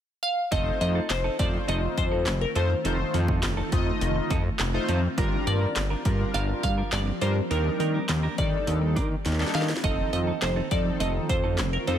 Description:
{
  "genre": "dance-pop",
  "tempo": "103 BPM",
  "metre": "4/4",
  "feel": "straight",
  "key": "unclear",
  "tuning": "A4 = 442 Hz",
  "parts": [
    { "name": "glassy wavetable pluck", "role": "melody", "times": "0.2-12.0 s", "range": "Bb4 to F5", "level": "-30 LUFS", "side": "equal", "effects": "chorus, digital delay" },
    { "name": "chorused polysynth", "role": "accompaniment", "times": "0.5-12.0 s", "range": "F3 to Eb5", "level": "-32 LUFS", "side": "left 1 dB", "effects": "sidechain pumping" },
    { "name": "granular cloud pad", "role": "sustained chords", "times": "1.2-12.0 s", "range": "Eb3 to G4", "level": "-35 LUFS", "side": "equal", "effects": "built-in reverb, sidechain pumping" },
    { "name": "clean electric guitar", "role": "riff", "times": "0.5-12.0 s", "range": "C4 to Bb4", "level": "-36 LUFS", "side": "right 5 dB", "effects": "wide subtle chorus" },
    { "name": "fat analog bass", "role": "bass", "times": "0.5-12.0 s", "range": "F1 to Eb3", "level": "-26 LUFS", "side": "equal", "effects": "sidechain pumping" },
    { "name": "house drum kit", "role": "drums", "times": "0.5-12.0 s", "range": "handclaps, hi-hat, kick drum, snare drum", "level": "-29 LUFS", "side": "equal", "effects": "none" }
  ],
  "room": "digital ambience",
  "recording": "none",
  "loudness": "-23 LUFS",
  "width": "side -10 dB against mid",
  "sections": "0.5-12.0 A section",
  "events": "drum fill 9.3-9.8",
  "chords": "0.0 N.C.; 0.5 F7; 5.2 Gm7; 7.5 Ebmaj7; 9.8 F7",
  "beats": "| 0.52 1.10 1.68 2.27 | 2.85 3.43 4.01 4.60 | 5.18 5.76 6.34 6.93 | 7.51 8.09 8.67 9.26 | 9.84 10.42 11.00 11.59"
}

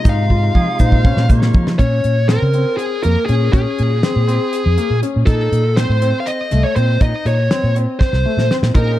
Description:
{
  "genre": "progressive instrumental, band music in an uneven meter",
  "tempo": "242 BPM (eighths)",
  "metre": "7/8",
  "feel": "straight",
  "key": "Bb minor",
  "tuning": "A4 = 436 Hz",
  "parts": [
    { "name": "high-gain lead guitar", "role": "melody", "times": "0.0-9.0 s", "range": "Ab4 to F5", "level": "-20 LUFS", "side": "left 1 dB", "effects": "distortion, plate reverb, ping-pong delay" },
    { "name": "percussive tonewheel organ", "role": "accompaniment", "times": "0.0-1.8, 8.7-9.0 s", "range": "C3 to Ab4", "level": "-25 LUFS", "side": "right 2 dB", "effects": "overdrive, fast rotary speaker, plate reverb" },
    { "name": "warm grand piano", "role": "arpeggios", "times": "0.1-9.0 s", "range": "A3 to F4", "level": "-23 LUFS", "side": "left 4 dB", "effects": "plate reverb, ping-pong delay" },
    { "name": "fretless electric bass", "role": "bass", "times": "0.1-9.0 s", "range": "C2 to F3", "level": "-16 LUFS", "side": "equal", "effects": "none" },
    { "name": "damped 70s drum kit", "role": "drums", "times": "0.1-8.9 s", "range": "hi-hat, kick drum, snare drum", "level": "-15 LUFS", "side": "equal", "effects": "none" },
    { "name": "tube shaker", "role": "percussion", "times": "0.1-1.7 s", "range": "none", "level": "-42 LUFS", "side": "right 9 dB", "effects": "none" },
    { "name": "bright alto saxophone", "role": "second line", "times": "0.6-1.8 s", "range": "Ab4 to Db5", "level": "-27 LUFS", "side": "right 6 dB", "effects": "plate reverb" }
  ],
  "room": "light reverb",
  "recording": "dark, warm production",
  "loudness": "-13 LUFS",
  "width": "side -14 dB against mid",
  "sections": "0.0-1.8 A section; 1.8-9.0 B section",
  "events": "drum fill 0.1-1.8, 8.0-8.8",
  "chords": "0.0 Dbmaj9; 1.8 Bbm7; 5.3 Cm7",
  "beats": "| 0.06 0.31 0.56 0.80 1.05 1.30 1.55 | 1.80 2.05 2.29 2.54 2.79 3.04 3.29 | 3.54 3.79 4.03 4.28 4.53 4.78 5.03 | 5.28 5.53 5.77 6.02 6.27 6.52 6.77 | 7.02 7.26 7.51 7.76 8.01 8.26 8.51 | 8.76"
}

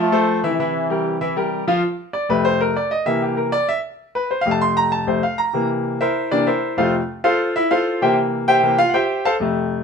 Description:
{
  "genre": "latin",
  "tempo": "194 BPM",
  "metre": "4/4",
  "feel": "straight",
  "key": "F major",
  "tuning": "A4 = 439 Hz",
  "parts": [
    { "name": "warm trombone section", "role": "melody", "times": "0.0-1.6 s", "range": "C3 to A3", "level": "-21 LUFS", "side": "right 1 dB", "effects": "none" },
    { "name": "bright concert grand piano", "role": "accompaniment", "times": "0.0-9.8 s", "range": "F2 to C6", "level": "-17 LUFS", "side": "left 1 dB", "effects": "none" }
  ],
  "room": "moderate studio reverb, RT60 0.8 s",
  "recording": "minimal, uncompressed stereo recording",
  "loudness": "-17 LUFS",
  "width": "side -6 dB against mid",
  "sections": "0.0-1.8 A section; 1.8-9.8 B section",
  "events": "grand piano solo 1.8-9.8",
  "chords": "0.0 F; 0.6 C7; 1.8 F; 3.1 C7; 4.3 F; 5.5 C7; 6.8 F; 8.0 C7; 9.3 F",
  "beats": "0.28 | 0.59 0.90 1.21 1.52 | 1.83 2.13 2.44 2.75 | 3.06 3.37 3.68 3.99 | 4.30 4.61 4.92 5.23 | 5.54 5.85 6.16 6.47 | 6.78 7.09 7.40 7.71 | 8.02 8.33 8.64 8.95 | 9.26 9.56"
}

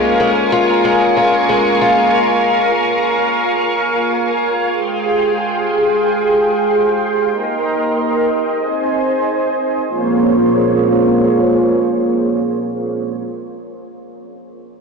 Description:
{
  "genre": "dream pop",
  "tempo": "93 BPM",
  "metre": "4/4",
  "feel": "straight",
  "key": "Bb dorian",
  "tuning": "A4 = 445 Hz",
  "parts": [
    { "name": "string machine, full ensemble", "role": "sustained chords", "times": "0.0-13.2 s", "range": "Bb3 to Eb6", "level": "-14 LUFS", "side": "right 1 dB", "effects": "ensemble chorus, low-pass filter" },
    { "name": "picked twelve-string acoustic guitar", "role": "arpeggios", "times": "0.0-2.7 s", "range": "Ab3 to F4", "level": "-16 LUFS", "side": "left 3 dB", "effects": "wide subtle chorus, low-pass filter, tape echo" }
  ],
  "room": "moderate huge ambient reverb, RT60 8.8 s",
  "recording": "blown-out, overdriven recording, overdrive",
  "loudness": "-13 LUFS",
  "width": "side -4 dB against mid",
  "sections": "0.0-9.9 A section; 9.9-12.5 B section",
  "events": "filter sweep 0.0-9.9",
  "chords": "0.0 Bbm7; 4.7 Fmadd9/Ab; 7.3 Cm7; 8.6 Ab; 9.9 Bbm7",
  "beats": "0.20 0.84 1.49 | 2.14 2.78 3.43 4.07 | 4.72 5.36 6.01 6.65 | 7.30 7.94 8.59 9.23 | 9.88 10.52 11.17 11.81"
}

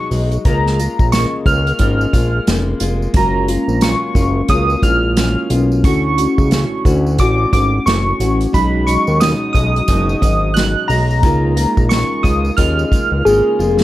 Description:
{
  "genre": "indie pop, bedroom pop",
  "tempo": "89 BPM",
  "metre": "4/4",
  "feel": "swing 60% on 16ths",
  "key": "unclear",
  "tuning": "A4 = 440 Hz",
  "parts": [
    { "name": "soft electric-piano-like synth keys", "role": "melody", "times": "0.0-13.8 s", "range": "G#4 to F#6", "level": "-18 LUFS", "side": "equal", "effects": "analog chorus" },
    { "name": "nylon-string guitar", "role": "accompaniment", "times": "0.0-13.8 s", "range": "B2 to F#4", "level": "-21 LUFS", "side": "left 3 dB", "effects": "wide subtle chorus, warbly pitch drift" },
    { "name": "fat analog bass", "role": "bass", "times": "0.1-13.8 s", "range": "E#1 to D#2", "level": "-17 LUFS", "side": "equal", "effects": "none" },
    { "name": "unplugged drum kit", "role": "drums", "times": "0.1-13.8 s", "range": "hi-hat, kick drum, snare drum", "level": "-17 LUFS", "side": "equal", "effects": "none" },
    { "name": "tambourine", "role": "percussion", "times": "0.1-13.8 s", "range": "none", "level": "-35 LUFS", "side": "right 4 dB", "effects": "none" },
    { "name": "mellow tine electric piano", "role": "accompaniment", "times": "3.1-13.8 s", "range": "G#3 to F#4", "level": "-23 LUFS", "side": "right 2 dB", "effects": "medium stereo tremolo, cassette tape" }
  ],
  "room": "light reverb",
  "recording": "dark, warm production",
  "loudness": "-12 LUFS",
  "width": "side -15 dB against mid",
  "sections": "0.0-13.8 A section",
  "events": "drum fill 13.3-13.8",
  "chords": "0.5 C#6; 3.1 F#maj7; 5.8 Dmaj7; 8.5 B6; 11.2 C#6",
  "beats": "| 0.45 1.13 1.80 2.47 | 3.15 3.82 4.50 5.17 | 5.84 6.52 7.19 7.87 | 8.54 9.21 9.89 10.56 | 11.24 11.91 12.59 13.26"
}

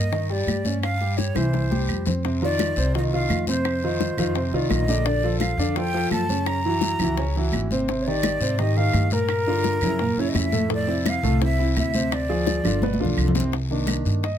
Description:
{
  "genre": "Afro-Cuban jazz",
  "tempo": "170 BPM",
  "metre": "4/4",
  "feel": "straight",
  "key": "unclear",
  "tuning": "A4 = 440 Hz",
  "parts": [
    { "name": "breathy jazz flute", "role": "melody", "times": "0.0-13.2 s", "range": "Bb4 to A#5", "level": "-27 LUFS", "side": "left 1 dB", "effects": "none" },
    { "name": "warm grand piano", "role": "accompaniment", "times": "0.0-14.4 s", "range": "A2 to Eb5", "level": "-25 LUFS", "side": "right 1 dB", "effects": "none" },
    { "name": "upright bass", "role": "bass", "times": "0.0-14.4 s", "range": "G1 to Ab2", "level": "-25 LUFS", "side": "equal", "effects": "none" },
    { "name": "bongos", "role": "percussion", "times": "0.1-14.4 s", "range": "none", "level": "-30 LUFS", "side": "left 10 dB", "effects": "none" },
    { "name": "congas", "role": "percussion", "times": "0.1-14.4 s", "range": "none", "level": "-29 LUFS", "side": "left 1 dB", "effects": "none" },
    { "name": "guiro", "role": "percussion", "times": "0.1-14.4 s", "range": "none", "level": "-36 LUFS", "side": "left 6 dB", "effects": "none" },
    { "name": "claves", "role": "percussion", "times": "0.5-14.1 s", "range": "none", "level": "-35 LUFS", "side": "right 9 dB", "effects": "none" }
  ],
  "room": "little or no reverb",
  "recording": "close, detailed microphones",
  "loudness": "-20 LUFS",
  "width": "side -9 dB against mid",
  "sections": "0.0-2.2 A section; 2.2-13.5 B section",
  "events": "drum fill 1.4-2.2, 12.8-13.5",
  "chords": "0.0 Cmadd9 (rootless); 0.8 Cadd11; 1.5 C; 2.2 F5; 5.1 Bbmaj7; 6.5 F#9; 7.9 Abmaj7; 9.3 Gm7; 10.0 F#7; 10.7 Fmaj7; 12.1 Dm7b5; 12.8 G7; 13.5 Cm9",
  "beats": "0.12 0.47 | 0.83 1.18 1.53 1.89 | 2.24 2.59 2.95 3.30 | 3.65 4.00 4.36 4.71 | 5.06 5.42 5.77 6.12 | 6.47 6.83 7.18 7.53 | 7.88 8.24 8.59 8.94 | 9.29 9.65 10.00 10.35 | 10.71 11.06 11.41 11.77 | 12.12 12.47 12.82 13.18 | 13.53 13.88 14.24"
}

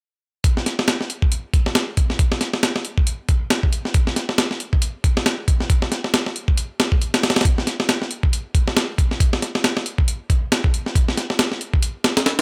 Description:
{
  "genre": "breakbeat",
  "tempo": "137 BPM",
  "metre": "4/4",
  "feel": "swing 58% on 16ths",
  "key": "none",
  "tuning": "none",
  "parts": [
    { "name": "breakbeat sampler-style drum kit", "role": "drums", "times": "0.4-12.4 s", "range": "hi-hat, kick drum, snare drum", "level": "-20 LUFS", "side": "equal", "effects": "none" }
  ],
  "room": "little or no reverb",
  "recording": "none",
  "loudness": "-20 LUFS",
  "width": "mono",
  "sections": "0.4-12.4 A section",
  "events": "none",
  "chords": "none",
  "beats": "| 0.44 0.88 1.32 1.75 | 2.19 2.63 3.07 3.51 | 3.94 4.38 4.82 5.26 | 5.70 6.13 6.57 7.01 | 7.45 7.88 8.32 8.76 | 9.20 9.64 10.07 10.51 | 10.95 11.39 11.83 12.27"
}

